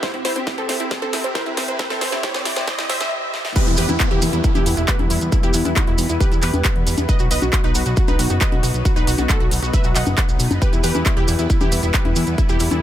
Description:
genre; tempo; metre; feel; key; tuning
uplifting trance; 136 BPM; 4/4; straight; E harmonic minor; A4 = 440 Hz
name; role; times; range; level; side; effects
wide unison pluck; melody; 0.0-12.8 s; C4 to F#5; -24 LUFS; equal; sidechain pumping, digital delay
wide unison pluck; arpeggios; 0.0-3.0 s; E4 to C5; -30 LUFS; right 2 dB; sidechain pumping, ping-pong delay
big-room dance drum kit; drums; 0.0-12.8 s; congas, crash cymbal, handclaps, hi-hat, snare drum; -24 LUFS; left 1 dB; high-pass filter on hats, high-pass filter on snare, high-pass filter on perc, high-pass filter on cymbals, high-pass filter on room
electronic kick drum; drums; 0.0-12.5 s; none; -18 LUFS; equal; none
riser and downlifter; sound effects; 0.0-7.1 s; none; -28 LUFS; equal; none
maracas; percussion; 3.6-12.8 s; none; -29 LUFS; right 3 dB; none
fat analog bass; bass; 3.7-12.8 s; E1 to E2; -22 LUFS; equal; tube saturation, sidechain pumping
room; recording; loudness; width
little or no reverb; high-pass filter; -16 LUFS; side -12 dB against mid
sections
0.0-3.6 A section; 3.6-12.8 B section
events
build-up 0.0-3.6; drum fill 0.0-3.1, 3.3; riser 0.0-3.1; filter sweep on synth arpeggio sound 0.0-3.6; stop 3.1-3.6; drop 3.6-12.8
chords
0.0 C; 3.6 Em; 7.1 B; 10.6 Em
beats
| 0.03 0.47 0.91 1.35 | 1.79 2.23 2.67 3.12 | 3.56 4.00 4.44 4.88 | 5.32 5.76 6.21 6.65 | 7.09 7.53 7.97 8.41 | 8.85 9.29 9.73 10.18 | 10.62 11.06 11.50 11.94 | 12.38

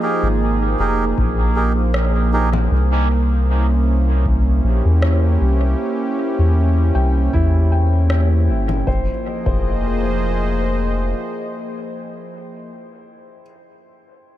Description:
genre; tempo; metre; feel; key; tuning
ambient dub; 78 BPM; 4/4; swing 54% on 16ths; F minor; A4 = 438 Hz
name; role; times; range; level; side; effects
warm analog pad; sustained chords; 0.0-12.7 s; F3 to Eb5; -22 LUFS; right 2 dB; chorus
felt-muted upright piano; arpeggios; 0.0-14.4 s; E4 to Bb5; -30 LUFS; left 2 dB; low-pass filter, dub echo
melodica; stabs; 0.0-2.5 s; Eb4 to Bb4; -24 LUFS; right 2 dB; dub echo
soft dub sub bass; bass; 0.2-11.1 s; F1 to E2; -16 LUFS; equal; none
electronic kick drum; drums; 1.2-9.7 s; none; -23 LUFS; equal; none
electronic rim click and congas; drums; 1.9-8.8 s; none; -28 LUFS; left 1 dB; dub echo
room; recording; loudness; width
digital ambience; none; -15 LUFS; side -13 dB against mid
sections
0.0-8.9 A section; 8.9-11.9 B section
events
none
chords
0.0 Fm11; 2.7 C7b9; 8.9 Fm7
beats
0.41 1.18 1.95 | 2.71 3.48 4.25 5.02 | 5.79 6.56 7.33 8.10 | 8.87 9.64 10.41 11.18

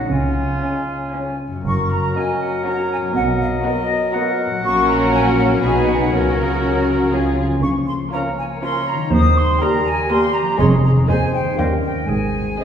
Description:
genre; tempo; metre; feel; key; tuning
cinematic, playful, whimsical film cue; 120 BPM; 3/4; straight; F# major; A4 = 437 Hz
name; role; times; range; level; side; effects
clear clarinet; second line; 0.0-12.6 s; C#4 to F#5; -26 LUFS; equal; none
mellow flute section; second line; 0.0-12.6 s; C#5 to Eb6; -23 LUFS; equal; none
warm bassoon; accompaniment; 0.0-12.6 s; C#3 to Ab3; -29 LUFS; equal; none
concert harp; arpeggios; 0.0-12.6 s; F#2 to C5; -27 LUFS; left 4 dB; none
warm oboe; second line; 0.1-12.6 s; E#4 to Eb5; -29 LUFS; right 1 dB; none
muted studio cello section; bass; 0.1-12.5 s; Eb2 to C#3; -23 LUFS; right 1 dB; none
muted studio double bass section; bass; 0.1-12.5 s; F1 to Eb2; -21 LUFS; right 1 dB; none
muted studio violin section; melody; 0.6-12.6 s; G#4 to G#5; -29 LUFS; left 1 dB; none
muted studio violin section; second line; 0.6-12.6 s; C#4 to Ab4; -29 LUFS; left 2 dB; none
muted studio viola section; accompaniment; 0.6-12.6 s; Ab3 to D#4; -27 LUFS; right 1 dB; none
warm French horn section; sustained chords; 0.6-12.6 s; G#3 to Ab4; -27 LUFS; left 2 dB; none
room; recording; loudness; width
wet recital hall reverb, RT60 1.7 s; recorded in a church or concert hall; -16 LUFS; side -8 dB against mid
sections
0.0-1.6 A section; 1.6-12.6 B section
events
none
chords
0.1 C#; 1.6 F#; 3.1 Bmaj7; 4.6 F#/A#; 5.6 G#m7/B; 6.1 F#/C#; 7.1 C#; 7.6 Bbm/Db; 9.1 Eb; 10.6 Db/F; 11.1 Ab/Eb; 12.1 Ab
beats
| 0.10 0.61 1.13 | 1.65 2.15 2.65 | 3.14 3.64 4.13 | 4.63 5.12 5.61 | 6.11 6.62 7.12 | 7.63 8.13 8.63 | 9.12 9.62 10.11 | 10.60 11.09 11.59 | 12.10 12.61

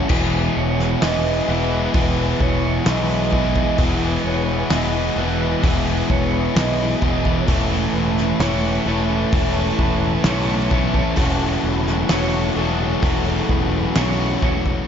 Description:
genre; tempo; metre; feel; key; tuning
post-rock; 65 BPM; 4/4; straight; E major; A4 = 441 Hz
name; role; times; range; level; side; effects
rich studio string section; sustained chords; 0.0-14.9 s; E4 to A5; -31 LUFS; left 1 dB; none
electric guitar through a small old amp; arpeggios; 0.0-14.9 s; A4 to D#5; -28 LUFS; right 3 dB; wide subtle chorus, digital delay, slapback echo
distorted electric guitar; riff; 0.0-14.9 s; E3 to F#4; -22 LUFS; left 8 dB; distortion, slapback echo
distorted electric guitar; riff; 0.0-14.9 s; E2 to A3; -24 LUFS; right 10 dB; distortion, slapback echo
growling fingered electric bass; bass; 0.1-14.8 s; E1 to B1; -24 LUFS; equal; overdrive
loose indie drum kit; drums; 0.1-14.9 s; crash cymbal, hi-hat, kick drum, snare drum; -23 LUFS; equal; none
room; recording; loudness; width
moderate lush hall reverb, RT60 2.8 s; big arena sound, nothing above 7.5 kHz; -17 LUFS; side -8 dB against mid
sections
0.0-14.9 A section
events
none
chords
0.1 Emaj7; 7.5 Aadd9/E; 11.2 F#m/E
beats
| 0.10 1.02 1.94 2.87 | 3.79 4.71 5.64 6.56 | 7.48 8.41 9.33 10.26 | 11.18 12.11 13.04 13.96

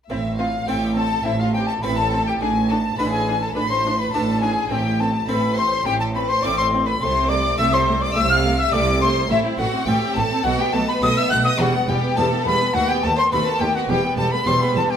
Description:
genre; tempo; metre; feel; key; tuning
classical, baroque-style concerto movement with solo episodes; 104 BPM; 4/4; straight; A minor, E minor from 9.3 s; A4 = 445 Hz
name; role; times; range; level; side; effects
rich chamber violin section; melody; 0.1-15.0 s; E5 to F#6; -25 LUFS; left 3 dB; none
silver concert flute; melody; 0.1-15.0 s; E5 to F#6; -23 LUFS; left 2 dB; none
rich chamber violin section; second line; 0.1-15.0 s; E4 to F#5; -26 LUFS; left 1 dB; none
harpsichord; accompaniment; 0.1-15.0 s; D#2 to B4; -30 LUFS; equal; none
rich chamber viola section; accompaniment; 0.1-15.0 s; G3 to D4; -28 LUFS; right 1 dB; none
rich symphonic double bass section; bass; 0.1-14.8 s; E1 to D#2; -26 LUFS; right 2 dB; none
warm chamber cello section; bass; 0.1-14.8 s; D#2 to C3; -25 LUFS; right 3 dB; none
room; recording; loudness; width
wet recital hall reverb, RT60 1.6 s; none; -17 LUFS; side -8 dB against mid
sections
0.1-15.0 A section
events
none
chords
0.1 Am; 2.4 E5/A; 4.7 Am; 7.0 Am/C; 9.3 Am; 10.4 B7; 11.6 Em; 12.7 B7/D#; 13.9 Em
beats
| 0.10 0.68 1.25 1.83 | 2.41 2.98 3.56 4.13 | 4.71 5.29 5.86 6.43 | 7.01 7.58 8.16 8.73 | 9.30 9.88 10.45 11.02 | 11.60 12.17 12.74 13.32 | 13.89 14.46

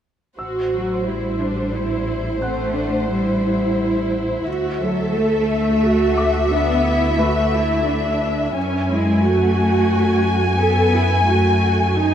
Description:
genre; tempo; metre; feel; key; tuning
cinematic, suspense film score; 88 BPM; 3/4; straight; A dorian; A4 = 440 Hz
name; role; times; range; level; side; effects
warm studio violin section; melody; 0.4-12.1 s; C5 to G#5; -23 LUFS; left 3 dB; none
warm studio viola section; accompaniment; 0.4-12.1 s; C4 to A4; -22 LUFS; right 3 dB; none
rich studio double bass section; bass; 0.4-12.1 s; A1 to F#2; -23 LUFS; equal; none
clear baby grand piano; texture; 0.4-12.1 s; B4 to F#6; -34 LUFS; equal; none
rich studio cello section; bass; 0.7-12.1 s; F#3 to B3; -22 LUFS; left 1 dB; none
room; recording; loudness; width
moderate cathedral reverb, RT60 5.9 s; in a vast, echoing space; -16 LUFS; side -9 dB against mid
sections
0.4-12.1 A section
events
none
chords
0.4 Am7; 4.5 Dadd9; 8.6 F#madd9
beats
| 0.38 1.06 1.74 | 2.42 3.11 3.79 | 4.47 5.15 5.83 | 6.52 7.20 7.88 | 8.56 9.24 9.93 | 10.61 11.29 11.97

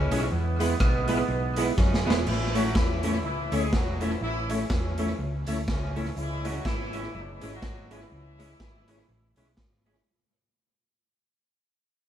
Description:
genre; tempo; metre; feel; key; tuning
ska; 123 BPM; 4/4; swing 58% on 8ths; A major; A4 = 443 Hz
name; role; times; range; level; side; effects
dark horn section; melody; 0.0-9.5 s; C#3 to G#4; -33 LUFS; equal; tape echo
hollow-body short-scale fingered electric bass; bass; 0.0-10.0 s; E1 to F#2; -31 LUFS; equal; none
archtop guitar, miked and amplified; accompaniment; 0.1-10.0 s; G#3 to E4; -30 LUFS; right 2 dB; none
percussive tonewheel organ; stabs; 0.1-10.0 s; B3 to C#5; -36 LUFS; left 4 dB; overdrive, chorus vibrato, slow rotary speaker
raw garage drum kit; drums; 0.1-10.0 s; crash cymbal, hi-hat, kick drum, rim click, snare drum; -29 LUFS; equal; tape echo
room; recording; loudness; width
moderate studio reverb, RT60 0.8 s; band playing live in one room, vinyl crackle; -24 LUFS; side -10 dB against mid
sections
0.0-2.3 A section; 2.3-10.1 B section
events
drum fill 1.8-2.3; fade-out 2.3-10.1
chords
0.3 E; 2.3 A; 6.2 C#m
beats
| 0.32 0.80 1.29 1.78 | 2.27 2.75 3.24 3.73 | 4.21 4.70 5.19 5.68 | 6.16 6.65 7.14 7.63 | 8.11 8.60 9.09 9.58

